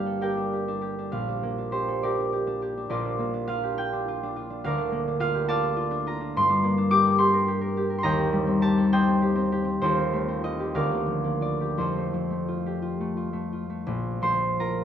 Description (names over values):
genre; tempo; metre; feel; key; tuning
classical, solo harp piece; 53-72 BPM (dotted quarters); 6/8; rubato; Bb major from 6.4 s; A4 = 441 Hz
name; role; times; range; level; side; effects
concert harp; solo; 0.0-14.8 s; G1 to D6; -23 LUFS; equal; none
room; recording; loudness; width
light reverb; close, detailed microphones; -23 LUFS; side -9 dB against mid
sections
0.0-13.9 A section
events
none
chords
0.0 Gm; 1.1 Gm/Bb; 2.9 Bb; 4.6 Bb/D; 6.4 Gm; 8.1 Cm7/Eb; 9.8 F7/Eb; 10.8 Bb/D; 11.8 F; 13.9 Bb5